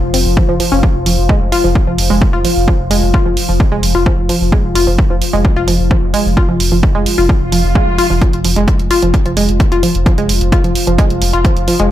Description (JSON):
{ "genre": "driving peak-time techno", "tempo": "130 BPM", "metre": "4/4", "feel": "straight", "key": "F minor", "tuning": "A4 = 440 Hz", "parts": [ { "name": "saturated sub bass", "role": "bass", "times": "0.0-11.9 s", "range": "F1", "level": "-16 LUFS", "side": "equal", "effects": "sidechain pumping, low-pass filter" }, { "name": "deep dark ambient pad", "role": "drone", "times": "0.0-11.9 s", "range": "F3 to F4", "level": "-20 LUFS", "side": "left 2 dB", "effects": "chorus, built-in reverb, sidechain pumping" }, { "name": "analog pluck", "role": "riff", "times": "0.1-11.8 s", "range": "F3 to F4", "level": "-16 LUFS", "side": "equal", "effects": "chorus, sidechain pumping, dub echo" }, { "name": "electronic hi-hat", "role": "drums", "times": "0.1-11.9 s", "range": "none", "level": "-20 LUFS", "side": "right 5 dB", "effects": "overdrive, sidechain pumping on hats" }, { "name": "electronic kick drum", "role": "drums", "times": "0.4-11.5 s", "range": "none", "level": "-14 LUFS", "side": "equal", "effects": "overdrive" }, { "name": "swell", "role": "sound effects", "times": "7.4-8.2 s", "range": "none", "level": "-20 LUFS", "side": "right 2 dB", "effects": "none" } ], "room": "little or no reverb", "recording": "none", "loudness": "-10 LUFS", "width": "side -12 dB against mid", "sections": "0.0-11.9 A section", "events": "swell 7.4-8.2", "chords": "none", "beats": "0.37 | 0.83 1.29 1.75 2.21 | 2.68 3.14 3.60 4.06 | 4.52 4.99 5.45 5.91 | 6.37 6.83 7.29 7.75 | 8.21 8.68 9.14 9.60 | 10.06 10.52 10.98 11.45 | 11.91" }